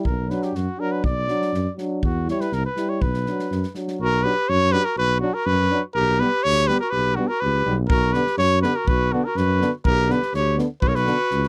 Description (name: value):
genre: balkan folk, Balkan brass band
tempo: 123 BPM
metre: 2/4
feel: straight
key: B harmonic minor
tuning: A4 = 440 Hz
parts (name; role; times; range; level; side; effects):
- mellow trumpet; melody; 0.0-11.5 s; F#4 to D5; -25 LUFS; equal; none
- clear euphonium; accompaniment; 0.0-11.2 s; D3 to G3; -31 LUFS; equal; none
- mellow euphonium; accompaniment; 0.0-11.2 s; B3 to E4; -29 LUFS; equal; none
- mellow tuba; bass; 0.1-11.5 s; B1 to F#2; -26 LUFS; equal; none
- natural country drum kit; percussion; 0.1-3.9, 7.9-11.5 s; kick drum, snare drum; -27 LUFS; equal; none
- mellow clarinet; second line; 4.0-11.5 s; D4 to A#4; -31 LUFS; equal; none
room: little or no reverb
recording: dry, close 1970s-style studio recording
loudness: -21 LUFS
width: mono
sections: 0.0-4.0 A section; 4.0-11.5 B section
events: none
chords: 0.0 Bm; 2.0 Em; 3.0 Bm; 5.9 G/B; 6.9 Gmaj7#11/B; 7.9 Bm; 9.8 G/B; 10.8 Bm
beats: | 0.04 0.54 | 1.03 1.53 | 2.02 2.51 | 3.01 3.50 | 3.99 4.48 | 4.97 5.46 | 5.94 6.43 | 6.92 7.41 | 7.89 8.38 | 8.87 9.36 | 9.84 10.33 | 10.82 11.31